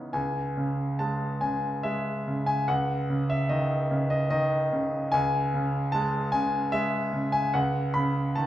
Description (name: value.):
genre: classical, lyrical solo piano.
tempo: 74 BPM.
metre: 3/4.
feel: rubato.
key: C# minor.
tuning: A4 = 442 Hz.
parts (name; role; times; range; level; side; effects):
bright concert grand piano; solo; 0.0-8.5 s; C#2 to B5; -24 LUFS; equal; none.
room: wet recital hall reverb, RT60 1.4 s.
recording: recorded in a church or concert hall.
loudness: -24 LUFS.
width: side -13 dB against mid.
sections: 0.1-8.5 A section.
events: none.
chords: 0.1 C#m; 2.7 C#madd9; 5.1 C#m; 7.5 B7sus2/C#.